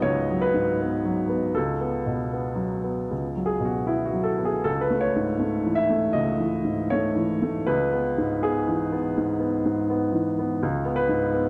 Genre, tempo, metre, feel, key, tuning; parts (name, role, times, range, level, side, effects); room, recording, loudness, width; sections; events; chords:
neoclassical minimalist piano; 76-85 BPM; 4/4; rubato; C# minor; A4 = 440 Hz
warm upright piano; solo; 0.0-11.5 s; C#2 to E5; -25 LUFS; equal
wet recital hall reverb, RT60 1.5 s; -25 LUFS; mono
0.0-11.5 A section
0.0 G#m7/C#; 1.6 B5/C#; 4.7 Amaj7/C#; 7.7 C#m7; 10.6 G#m/C#